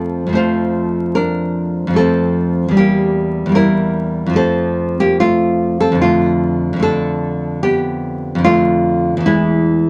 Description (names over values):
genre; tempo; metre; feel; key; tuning
classical, baroque-style dance for nylon-string guitar; 74 BPM; 4/4; rubato; unclear; A4 = 437 Hz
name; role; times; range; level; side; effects
nylon-string guitar; solo; 0.0-9.9 s; E2 to C5; -16 LUFS; equal; none
room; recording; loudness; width
moderate studio reverb, RT60 0.6 s; vinyl crackle; -16 LUFS; mono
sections
0.0-9.9 A section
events
none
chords
0.0 F; 2.8 Edim; 4.4 F; 6.0 Dm/F; 9.3 E